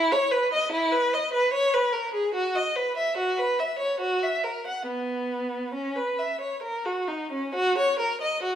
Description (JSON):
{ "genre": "classical, baroque-style suite movement for unaccompanied violin", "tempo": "65-75 BPM", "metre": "3/4", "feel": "rubato", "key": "B major", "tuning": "A4 = 440 Hz", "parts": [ { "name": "rich violin", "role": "solo", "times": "0.0-8.6 s", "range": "B3 to F#5", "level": "-24 LUFS", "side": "equal", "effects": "none" } ], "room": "moderate recital hall reverb, RT60 1.7 s", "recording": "none", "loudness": "-24 LUFS", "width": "side -10 dB against mid", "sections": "0.0-7.5 A section; 7.5-8.6 A section", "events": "none", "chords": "none" }